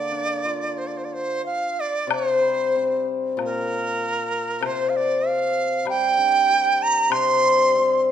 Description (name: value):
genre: chinese traditional, Chinese chamber ensemble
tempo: 90-98 BPM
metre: 4/4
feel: rubato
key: C shang mode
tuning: A4 = 440 Hz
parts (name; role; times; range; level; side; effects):
- bright reedy dizi; melody; 0.0-8.0 s; Bb4 to C6; -21 LUFS; right 4 dB; none
- hammered dulcimer; accompaniment; 0.0-8.1 s; Bb2 to G4; -23 LUFS; left 4 dB; none
- woodblock; percussion; 2.1-7.3 s; none; -29 LUFS; left 7 dB; none
room: wet recital hall reverb, RT60 1.6 s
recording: minimal, uncompressed stereo recording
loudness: -19 LUFS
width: side -9 dB against mid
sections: 0.0-2.1 A section; 2.1-8.1 B section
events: none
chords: none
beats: 0.13 0.77 1.43 | 2.09 2.75 3.38 4.01 | 4.63 5.25 5.88 6.49 | 7.11 7.72